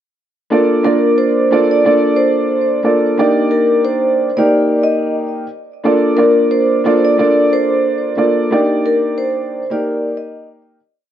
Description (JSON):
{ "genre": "hip hop", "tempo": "90 BPM", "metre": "4/4", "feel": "swing 60% on 16ths", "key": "Bb major", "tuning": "A4 = 440 Hz", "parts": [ { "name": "dark upright piano", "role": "accompaniment", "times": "0.5-10.8 s", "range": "Bb3 to D5", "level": "-14 LUFS", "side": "right 1 dB", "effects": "cassette tape, high-pass filter, low-pass filter, plate reverb" }, { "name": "vibraphone with soft mallets", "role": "melody", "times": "0.8-10.5 s", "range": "Bb4 to Eb5", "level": "-16 LUFS", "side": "left 1 dB", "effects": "high-pass filter, low-pass filter, plate reverb, ping-pong delay" } ], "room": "moderate studio reverb, RT60 0.6 s", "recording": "none", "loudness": "-12 LUFS", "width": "side -10 dB against mid", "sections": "0.5-11.1 verse", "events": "fade-out 8.5-11.1", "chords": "0.5 Bbmaj7; 3.2 Ebmaj7/Bb; 5.8 Bbmaj7; 8.5 Ebmaj7/Bb" }